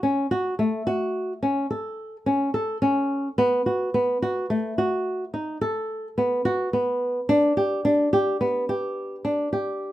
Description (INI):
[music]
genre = contemporary instrumental, contemporary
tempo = 107 BPM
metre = 7/4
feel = straight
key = unclear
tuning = A4 = 440 Hz
[part]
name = flamenco guitar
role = solo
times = 0.0-9.9 s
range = A3 to A4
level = -22 LUFS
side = equal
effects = none
[sound]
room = moderate studio reverb, RT60 0.6 s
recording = close, detailed microphones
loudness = -22 LUFS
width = side -14 dB against mid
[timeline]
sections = 0.0-9.9 A section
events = none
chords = none